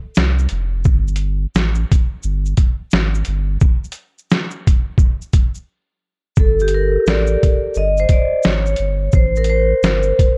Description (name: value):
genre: lo-fi hip hop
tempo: 87 BPM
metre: 4/4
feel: swing 64% on 16ths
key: G minor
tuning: A4 = 440 Hz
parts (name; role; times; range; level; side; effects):
- trip hop sampler-style drum kit; drums; 0.1-10.4 s; hi-hat, kick drum, shaker, snare drum; -17 LUFS; equal; none
- saturated sub bass; bass; 0.2-10.1 s; F1 to C2; -20 LUFS; equal; none
- vibraphone with medium hard mallets; accompaniment; 6.4-10.4 s; G4 to Eb5; -20 LUFS; equal; cassette tape
room: light reverb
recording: dark, warm production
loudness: -17 LUFS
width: mono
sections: 0.0-10.4 A section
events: vibraphone solo 0.0-10.4; break 5.7-6.4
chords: 0.0 Dm7 (rootless); 0.9 Gsus2; 2.2 N.C.; 6.4 Gsus2; 7.8 Gsus4; 8.4 C#5; 9.1 Am7